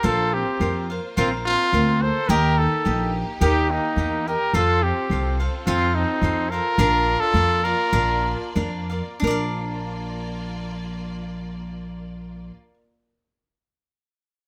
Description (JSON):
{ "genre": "mexican folk, mariachi", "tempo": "85-108 BPM", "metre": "2/4", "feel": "straight", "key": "Bb major", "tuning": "A4 = 442 Hz", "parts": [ { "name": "warm trumpet", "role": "melody", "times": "0.0-8.6 s", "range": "Eb4 to C5", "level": "-24 LUFS", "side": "equal", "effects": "none" }, { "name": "warm trumpet", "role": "second line", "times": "0.0-8.5 s", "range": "Bb3 to A4", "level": "-32 LUFS", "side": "equal", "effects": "none" }, { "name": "cavaquinho", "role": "accompaniment", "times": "0.0-12.8 s", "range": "D4 to G5", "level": "-30 LUFS", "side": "equal", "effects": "none" }, { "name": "rich studio violin section", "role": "sustained chords", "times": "0.0-12.5 s", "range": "Bb3 to D5", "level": "-40 LUFS", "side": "equal", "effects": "none" }, { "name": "upright bass", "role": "bass", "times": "0.0-12.5 s", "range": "Bb1 to F2", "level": "-26 LUFS", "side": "equal", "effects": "none" } ], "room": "moderate studio reverb, RT60 0.6 s", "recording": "none", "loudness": "-22 LUFS", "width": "mono", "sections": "0.0-9.2 A section; 9.2-12.0 B section", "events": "slowing down 6.8-9.2", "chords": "0.0 Bbsus2; 2.3 Eb; 4.5 F; 6.8 Bb", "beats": "| 0.04 0.61 | 1.18 1.74 | 2.30 2.86 | 3.41 3.98 | 4.54 5.11 | 5.67 6.22 | 6.78 7.34 | 7.93 8.55 | 9.23 9.94 | 10.64 11.34" }